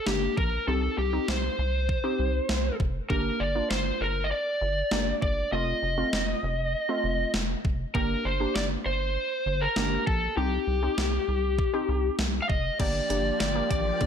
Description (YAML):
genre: synth-pop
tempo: 99 BPM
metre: 4/4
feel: straight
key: G minor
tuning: A4 = 439 Hz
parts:
  - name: lead guitar through a small cranked amp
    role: melody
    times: 0.0-14.1 s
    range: G4 to F5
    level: -28 LUFS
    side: left 1 dB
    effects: overdrive
  - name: warbly dusty pluck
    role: accompaniment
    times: 0.1-14.1 s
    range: A3 to G4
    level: -33 LUFS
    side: equal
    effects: chorus
  - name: rubbery square bass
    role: bass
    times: 0.1-14.1 s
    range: F1 to C2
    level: -30 LUFS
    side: equal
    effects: none
  - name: clean 12-bit digital drum machine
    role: drums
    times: 0.1-14.1 s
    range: crash cymbal, hi-hat, kick drum, snare drum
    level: -30 LUFS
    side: equal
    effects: gated reverb
  - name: phased string machine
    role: sustained chords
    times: 12.8-14.1 s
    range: F3 to G4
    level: -34 LUFS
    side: equal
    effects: ensemble chorus, phaser
room: light reverb, digital ambience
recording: none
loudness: -25 LUFS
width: side -8 dB against mid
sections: 0.0-12.8 A section; 12.8-14.1 B section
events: none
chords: 0.0 Gm; 0.7 Cm; 3.1 Gm7; 5.5 F7; 7.9 Gm; 10.4 Cm; 12.8 Gm7